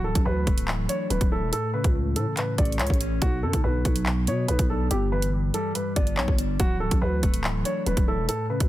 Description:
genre	hip hop, drill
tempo	142 BPM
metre	4/4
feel	half-time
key	unclear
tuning	A4 = 439 Hz
part	dark concert grand piano	melody	0.0-8.7 s	F#4 to D5	-30 LUFS	equal	digital delay
part	mellow electric guitar	accompaniment	0.0-8.7 s	G2 to E4	-30 LUFS	equal	none
part	growling 808-style bass	bass	0.0-8.7 s	D1 to B2	-26 LUFS	equal	none
part	drill drum kit	drums	0.2-8.7 s	handclaps, hi-hat, kick drum	-25 LUFS	equal	none
part	swell	sound effects	8.6-8.7 s	none	-51 LUFS	left 1 dB	none
room	little or no reverb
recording	dense, heavily limited modern master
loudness	-22 LUFS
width	side -15 dB against mid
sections	0.0-8.7 A section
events	none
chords	0.0 Dadd9; 1.5 A; 3.2 Bm; 4.9 G6; 6.6 Dadd9

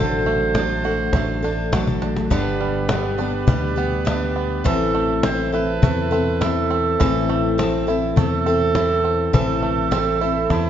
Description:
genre	acoustic folk duo or small band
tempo	103 BPM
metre	4/4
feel	straight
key	unclear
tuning	A4 = 445 Hz
part	bright clarinet	second line	0.0-10.7 s	E4 to C5	-25 LUFS	right 6 dB	none
part	picked steel-string acoustic guitar	accompaniment	0.0-10.7 s	G2 to A4	-22 LUFS	left 3 dB	none
part	bluegrass banjo	arpeggios	0.0-10.7 s	D3 to F#4	-28 LUFS	right 6 dB	none
part	fingered electric bass	bass	0.0-10.7 s	G1 to E2	-25 LUFS	right 1 dB	none
part	cajon	percussion	0.3-10.7 s	none	-22 LUFS	left 2 dB	none
part	hand-pumped harmonium	sustained chords	2.3-10.7 s	G4 to B5	-29 LUFS	right 5 dB	none
room	moderate concert hall reverb, RT60 2.3 s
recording	dark, warm production, nothing above 7.7 kHz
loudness	-17 LUFS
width	side -10 dB against mid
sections	0.0-10.7 A section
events	drum fill 1.9-2.3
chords	0.0 D/A; 2.3 G; 4.7 Am

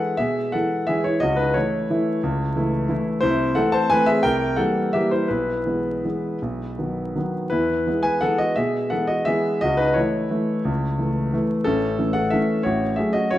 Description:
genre	classical, piano waltz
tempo	155-190 BPM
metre	3/4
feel	rubato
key	E major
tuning	A4 = 439 Hz
part	warm grand piano	solo	0.0-13.4 s	A1 to A5	-19 LUFS	equal	none
room	wet recital hall reverb, RT60 1.6 s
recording	vinyl crackle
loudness	-19 LUFS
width	side -13 dB against mid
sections	0.0-13.4 A section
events	none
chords	0.0 E; 1.2 A/C#; 3.2 Am/C; 4.2 C7; 5.3 E/B; 6.4 B; 7.5 E; 9.6 A/C#; 11.7 A; 12.6 F#m/A

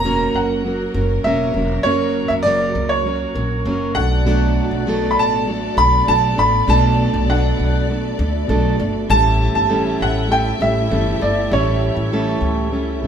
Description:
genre	acoustic pop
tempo	99 BPM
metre	4/4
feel	straight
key	unclear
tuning	A4 = 440 Hz
part	clear upright piano	melody	0.0-13.1 s	C#5 to B5	-19 LUFS	equal	none
part	fingerpicked plugged-in steel-string acoustic guitar	accompaniment	0.0-13.1 s	F#2 to A#4	-20 LUFS	right 2 dB	none
part	dark studio string section	sustained chords	0.0-13.1 s	F#3 to E5	-28 LUFS	left 1 dB	none
part	upright bass	bass	0.0-13.1 s	E1 to D2	-20 LUFS	equal	none
room	wet stone room reverb, RT60 0.9 s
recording	band playing live in one room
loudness	-15 LUFS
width	side -8 dB against mid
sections	0.0-13.1 A section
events	none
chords	0.0 F#; 4.0 Bm7; 9.1 A7

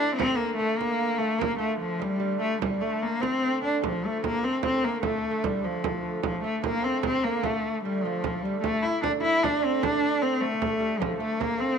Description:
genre	medieval dance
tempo	100 BPM (dotted quarters)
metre	6/8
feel	straight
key	D minor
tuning	A4 = 440 Hz
part	rich cello	melody	0.0-11.8 s	F3 to E4	-26 LUFS	left 2 dB	none
part	lute	second line	0.0-11.8 s	F3 to F4	-33 LUFS	right 12 dB	none
part	dark hurdy-gurdy	drone	0.0-11.8 s	D3 to A3	-35 LUFS	equal	none
part	frame drum	percussion	0.2-11.6 s	none	-33 LUFS	right 9 dB	none
room	moderate echo chamber reverb, RT60 1.8 s, studio ambience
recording	1960s-style stereo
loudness	-24 LUFS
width	side -6 dB against mid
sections	0.0-3.8 A section; 3.8-11.8 B section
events	none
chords	none

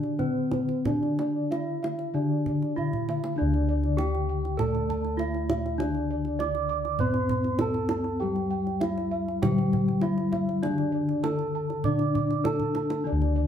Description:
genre	Javanese gamelan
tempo	99 BPM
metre	4/4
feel	straight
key	D slendro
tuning	A4 = 440 Hz
part	gamelan-type bronze metallophone	melody	0.0-13.5 s	C4-40c to D5	-30 LUFS	equal	none
part	gamelan-type bronze metallophone	accompaniment	0.0-13.5 s	D3 to D4	-30 LUFS	left 3 dB	none
part	gamelan-type bronze metallophone	arpeggios	0.0-13.5 s	C5-40c to D6	-34 LUFS	right 2 dB	none
part	gamelan-type bossed gongs	bass	0.0-13.5 s	D2 to G4-20c	-31 LUFS	equal	none
part	kendang	percussion	0.0-13.3 s	none	-32 LUFS	right 2 dB	none
room	moderate large studio reverb, RT60 0.9 s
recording	band playing live in one room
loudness	-24 LUFS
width	side -9 dB against mid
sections	0.0-3.4 A section; 3.4-13.5 B section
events	drum fill 2.8-3.4, 12.6-13.1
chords	none

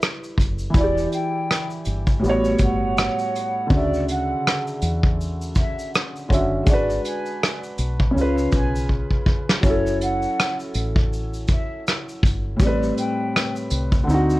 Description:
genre	lo-fi hip hop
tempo	81 BPM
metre	4/4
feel	swing 58% on 16ths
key	D major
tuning	A4 = 440 Hz
part	felt-muted upright piano	accompaniment	0.0-14.4 s	A2 to E5	-24 LUFS	equal	cassette tape, low-pass filter, plate reverb
part	vintage brush drum kit	drums	0.0-14.4 s	hi-hat, kick drum, rim click, shaker, snare drum	-21 LUFS	equal	none
part	deep dub fingered electric bass	bass	0.4-14.4 s	E1 to E2	-25 LUFS	equal	none
part	breathy mellow jazz flute	melody	0.8-13.5 s	C#5 to G#5	-27 LUFS	equal	low-pass filter, analog delay, plate reverb
room	light reverb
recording	cassette tape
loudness	-19 LUFS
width	side -18 dB against mid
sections	0.0-14.4 A section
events	drum fill 8.9-9.6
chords	0.0 G69; 0.7 Em7; 2.2 A13; 3.7 Dmaj9; 6.7 G#m7b5; 8.2 C#7; 9.6 F#m7; 12.6 Am9

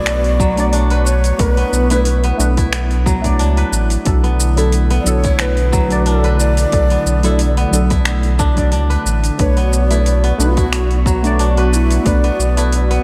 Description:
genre	organic downtempo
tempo	90 BPM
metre	4/4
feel	swing 54% on 16ths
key	B minor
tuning	A4 = 440 Hz
part	breathy low Native American-style wooden flute	melody	0.0-13.0 s	E4 to D5	-25 LUFS	equal	analog delay
part	deep mellow chord stab	accompaniment	0.0-12.8 s	F#3 to D5	-25 LUFS	equal	chorus, cassette tape, sidechain pumping, analog delay
part	warm analog pad	sustained chords	0.0-13.0 s	D3 to C#6	-27 LUFS	equal	chorus, sidechain pumping
part	kora	arpeggios	0.0-13.0 s	F#3 to B4	-26 LUFS	equal	analog delay
part	warm sub bass	bass	0.0-13.0 s	A1 to C#2	-18 LUFS	equal	sidechain pumping
part	deep house drum kit	drums	0.1-13.0 s	finger snaps, hi-hat, shaker	-26 LUFS	equal	overdrive
part	electronic kick drum	drums	0.4-12.2 s	none	-20 LUFS	equal	overdrive
room	moderate cathedral reverb, RT60 6.4 s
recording	dreamy mix soaked in reverb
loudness	-15 LUFS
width	mono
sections	0.0-13.0 A section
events	none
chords	0.0 Bm7

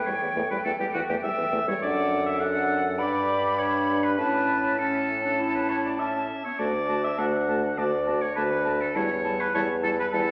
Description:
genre	quick classical-period movement for wind quintet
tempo	102 BPM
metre	4/4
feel	straight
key	D major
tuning	A4 = 440 Hz
part	silver concert flute	melody	0.0-10.2 s	F#5 to B5	-33 LUFS	equal	none
part	clear oboe	second line	0.0-10.3 s	F#4 to F#5	-30 LUFS	equal	none
part	warm clarinet	accompaniment	0.0-10.3 s	B3 to A4	-35 LUFS	equal	none
part	mellow French horn	accompaniment	0.1-10.3 s	E3 to D4	-35 LUFS	equal	none
part	mellow bassoon	bass	0.1-10.3 s	D2 to A2	-31 LUFS	equal	none
room	wet scoring stage reverb, RT60 1.8 s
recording	none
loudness	-26 LUFS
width	mono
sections	0.0-10.3 A section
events	none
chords	0.0 A5/E; 1.8 D/F#; 3.0 G; 4.2 A; 6.6 D; 9.0 A5/E

